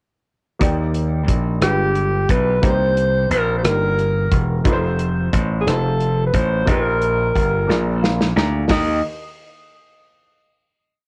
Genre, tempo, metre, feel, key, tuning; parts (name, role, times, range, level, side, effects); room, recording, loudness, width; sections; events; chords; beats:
slow gospel; 59 BPM (dotted quarters); 6/8; straight; Eb major; A4 = 439 Hz
warm upright piano; accompaniment; 0.6-9.0 s; Eb2 to Bb5; -28 LUFS; equal; cassette tape
slap bass; bass; 0.6-9.0 s; Fb1 to Eb2; -22 LUFS; equal
natural country drum kit; drums; 0.6-8.9 s; hi-hat, kick drum, rim click, snare drum; -23 LUFS; equal; cassette tape
breathy alto saxophone; melody; 1.6-9.0 s; G4 to Eb5; -23 LUFS; equal; cassette tape, plate reverb, analog delay
light reverb; home recording on cassette; -18 LUFS; mono
0.6-8.7 verse; 8.7-10.7 final chord
drum fill 7.7-8.7; upright piano fill 7.7-8.7
0.6 Ebmaj7; 1.6 G7b9; 2.6 Cm7; 4.7 F7; 6.7 Eb/Bb; 7.7 Bb7; 8.7 Eb
| 0.61 1.62 | 2.63 3.64 | 4.65 5.66 | 6.67 7.68 | 8.70